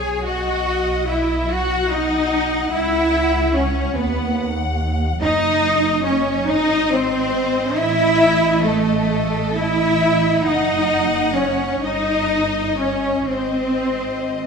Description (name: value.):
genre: classical, slow romantic movement for string orchestra.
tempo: 40-49 BPM (dotted quarters).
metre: 6/8.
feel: rubato.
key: unclear.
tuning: A4 = 440 Hz.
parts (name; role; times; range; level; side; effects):
warm symphonic violin section; melody; 0.0-14.5 s; C#5 to F#5; -27 LUFS; left 8 dB; none.
warm chamber violin section; second line; 0.0-14.5 s; A4 to G#5; -24 LUFS; left 4 dB; none.
warm symphonic viola section; accompaniment; 0.0-14.5 s; A3 to G#4; -24 LUFS; left 2 dB; none.
clear symphonic cello section; bass; 0.0-14.5 s; A3 to G#4; -20 LUFS; right 3 dB; none.
rich symphonic double bass section; bass; 0.0-14.5 s; F#1 to D#2; -24 LUFS; right 3 dB; none.
room: wet scoring stage reverb, RT60 1.7 s.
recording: recorded in a church or concert hall.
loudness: -16 LUFS.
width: side -5 dB against mid.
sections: 0.0-14.5 A section.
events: none.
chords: 0.2 B; 2.7 F#5/C#; 4.0 B/D#; 5.2 D#m7/F#; 6.5 G#; 7.8 A5; 10.4 D#m7/F#; 11.8 D#7/G; 13.3 G#.